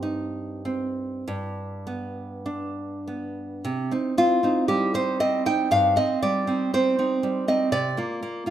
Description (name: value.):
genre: romantic piece for solo classical guitar.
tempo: 48-62 BPM.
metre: 4/4.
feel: rubato.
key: C minor.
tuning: A4 = 439 Hz.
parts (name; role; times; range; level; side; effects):
nylon-string guitar; solo; 0.0-8.5 s; G2 to G5; -23 LUFS; right 1 dB; none.
room: moderate recital hall reverb, RT60 1.3 s.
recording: minimal, uncompressed stereo recording.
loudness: -22 LUFS.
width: side -11 dB against mid.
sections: 0.0-3.7 A section; 3.7-8.5 B section.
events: none.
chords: 0.0 Cm/G; 1.3 G; 3.7 Cm; 7.7 Bb/C.